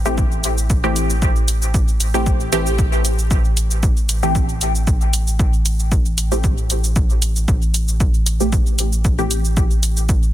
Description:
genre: dub techno.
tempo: 115 BPM.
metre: 4/4.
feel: swing 53% on 16ths.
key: A minor.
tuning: A4 = 440 Hz.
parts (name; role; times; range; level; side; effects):
soft dub sub bass; bass; 0.0-10.3 s; A1; -20 LUFS; equal; tube saturation, sidechain pumping.
filtered dub chord stab; stabs; 0.1-9.5 s; E3 to G4; -23 LUFS; equal; chorus, phaser, vintage 12-bit sampler grit, sidechain pumping, dub echo.
electronic shaker and hi-hat; drums; 0.1-10.3 s; none; -24 LUFS; right 1 dB; overdrive.
electronic kick drum; drums; 0.2-10.2 s; none; -18 LUFS; equal; none.
room: little or no reverb.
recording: dense, heavily limited modern master.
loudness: -15 LUFS.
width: side -13 dB against mid.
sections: 0.0-10.3 A section.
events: filter sweep on synth stab 0.0-10.3.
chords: 0.0 Am7.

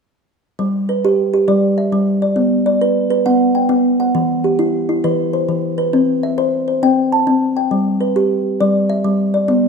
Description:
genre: southern african traditional.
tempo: 135 BPM (dotted quarters).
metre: 12/8.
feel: straight.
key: G major.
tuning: A4 = 440 Hz.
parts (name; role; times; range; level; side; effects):
kalimba; arpeggios; 0.6-9.7 s; E3 to A5; -14 LUFS; equal; none.
room: moderate recital hall reverb, RT60 1.5 s.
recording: minimal, uncompressed stereo recording.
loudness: -14 LUFS.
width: side -5 dB against mid.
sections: 0.6-9.7 A section.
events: none.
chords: 0.6 G; 2.4 Bm; 4.2 Em; 5.9 C; 7.7 G.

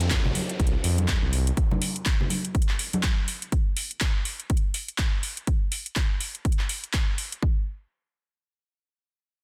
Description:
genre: deep house.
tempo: 123 BPM.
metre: 4/4.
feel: swing 58% on 16ths.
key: unclear.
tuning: A4 = 440 Hz.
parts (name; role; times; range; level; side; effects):
smooth synth bass; bass; 0.0-1.5 s; Bb1 to F2; -27 LUFS; equal; sidechain pumping.
house drum kit; drums; 0.0-7.4 s; handclaps, hi-hat; -32 LUFS; equal; none.
downlifter; sound effects; 0.0-3.5 s; none; -40 LUFS; equal; none.
electronic kick drum; drums; 0.1-7.6 s; none; -27 LUFS; equal; none.
congas; percussion; 0.3-3.0 s; none; -33 LUFS; equal; none.
room: digital ambience.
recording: dense, heavily limited modern master.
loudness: -26 LUFS.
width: mono.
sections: 0.0-7.4 A section; 7.4-9.4 B section.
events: none.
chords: none.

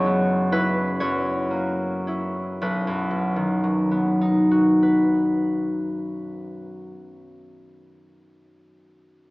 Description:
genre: classical, solo harp piece.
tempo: 34-44 BPM (dotted quarters).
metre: 6/8.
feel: rubato.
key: B major.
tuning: A4 = 440 Hz.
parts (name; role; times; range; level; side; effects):
concert harp; solo; 0.0-7.3 s; F#1 to E5; -20 LUFS; equal; none.
room: wet cathedral reverb, RT60 4.4 s.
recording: recorded in a church or concert hall, small speaker sound.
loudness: -20 LUFS.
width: side -22 dB against mid.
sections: 0.0-2.6 A section; 2.6-5.7 B section.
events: slowing down 0.0-2.6.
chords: 0.0 F#7sus4; 1.0 F#7; 2.6 B.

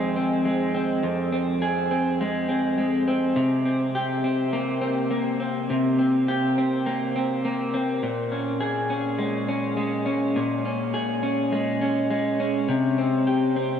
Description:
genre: dream pop.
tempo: 103 BPM.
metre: 4/4.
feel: straight.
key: unclear.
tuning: A4 = 441 Hz.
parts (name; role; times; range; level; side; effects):
electric guitar through a small old amp; solo; 0.0-13.8 s; F2 to Ab4; -22 LUFS; equal; lush chorus, diffuse ambient delay.
room: wet huge ambient reverb, RT60 8.6 s.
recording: dreamy mix soaked in reverb.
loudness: -22 LUFS.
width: side -8 dB against mid.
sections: 0.0-13.8 A section.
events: none.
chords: 0.0 Fm; 3.4 C5; 8.0 Bbm7; 12.7 C5.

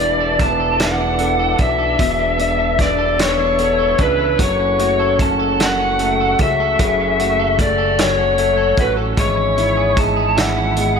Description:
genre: six-eight pop ballad.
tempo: 50 BPM (dotted quarters).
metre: 6/8.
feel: straight.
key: unclear.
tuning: A4 = 440 Hz.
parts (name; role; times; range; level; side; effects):
lead guitar through a small cranked amp; melody; 0.0-11.0 s; B4 to A5; -17 LUFS; left 2 dB; overdrive, tape echo.
clear concert grand piano; accompaniment; 0.0-11.0 s; B2 to A4; -24 LUFS; left 6 dB; none.
mellow tonewheel organ; sustained chords; 0.0-11.0 s; G#3 to E6; -26 LUFS; right 1 dB; fast rotary speaker.
electric guitar at the edge of break-up; arpeggios; 0.0-11.0 s; E3 to A4; -25 LUFS; right 12 dB; analog chorus, tape echo.
fat analog bass; bass; 0.0-11.0 s; E1 to C#2; -23 LUFS; right 1 dB; none.
loose indie drum kit; drums; 0.0-10.9 s; hi-hat, kick drum, snare drum; -20 LUFS; right 1 dB; none.
room: light reverb, small room ambience.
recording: none.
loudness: -14 LUFS.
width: side -6 dB against mid.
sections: 0.0-11.0 A section.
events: none.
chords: 0.0 E7sus4; 4.4 F#m; 9.2 C#m7/G#.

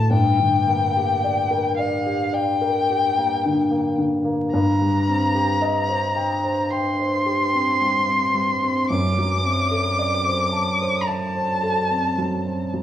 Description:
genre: classical, romantic duo for violin and grand piano.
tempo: 55 BPM.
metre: 4/4.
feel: rubato.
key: G minor.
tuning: A4 = 444 Hz.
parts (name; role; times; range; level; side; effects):
rich violin; melody; 0.0-12.7 s; F5 to D6; -22 LUFS; left 2 dB; none.
warm baby grand piano; accompaniment; 0.0-12.8 s; F#2 to A5; -21 LUFS; equal; none.
room: wet recital hall reverb, RT60 1.5 s.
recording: worn, warbling old tape, cassette tape, vinyl crackle, warbly pitch drift, small room ambience.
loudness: -18 LUFS.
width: side -11 dB against mid.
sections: 0.0-12.8 A section.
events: none.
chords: 0.1 Gm; 4.5 Cm/G; 8.9 D7/F#.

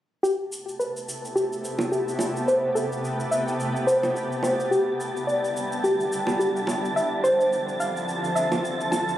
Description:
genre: sunset chillout.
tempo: 107 BPM.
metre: 4/4.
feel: swing 57% on 16ths.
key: A minor.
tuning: A4 = 439 Hz.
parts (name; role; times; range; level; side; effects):
shimmering ambient pad; sustained chords; 0.9-9.2 s; C3 to A4; -29 LUFS; equal; chorus, built-in reverb.
soft round pluck; arpeggios; 0.2-9.2 s; G4 to A5; -24 LUFS; equal; chorus, ping-pong delay.
shaker; drums; 0.2-9.2 s; none; -39 LUFS; equal; small room reverb.
wind-like tuned noise texture; texture; 0.7-9.2 s; A5; -33 LUFS; right 2 dB; built-in reverb.
bongos; percussion; 1.8-9.0 s; none; -28 LUFS; right 2 dB; none.
room: wet plate reverb, RT60 1.7 s.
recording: recorded on a phone in the room, studio reverb, compression.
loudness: -22 LUFS.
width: side -12 dB against mid.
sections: 0.2-9.2 A section.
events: filter sweep on synth arpeggio sound 0.2-9.2.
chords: 0.2 Am9; 4.7 Em7; 7.0 Dm9.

